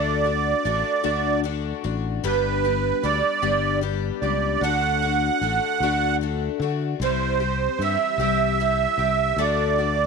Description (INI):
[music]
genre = folk rock and heartland rock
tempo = 50 BPM (dotted quarters)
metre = 6/8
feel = straight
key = D mixolydian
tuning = A4 = 440 Hz
[part]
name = musette accordion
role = melody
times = 0.0-10.1 s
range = B4 to F#5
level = -22 LUFS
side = right 8 dB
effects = none
[part]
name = picked twelve-string acoustic guitar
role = accompaniment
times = 0.0-10.1 s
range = G2 to G4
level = -27 LUFS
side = left 15 dB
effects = none
[part]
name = fingered electric bass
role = bass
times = 0.0-10.0 s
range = G1 to D3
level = -26 LUFS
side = left 2 dB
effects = none
[sound]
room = light reverb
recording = 1960s-style stereo with parts hard left and right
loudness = -20 LUFS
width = side -4 dB against mid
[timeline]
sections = 0.0-10.1 A section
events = none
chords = 0.0 D; 2.2 G; 4.6 D; 7.0 C; 9.4 D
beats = 1.05 | 2.24 3.43 | 4.62 5.81 | 7.00 8.19 | 9.38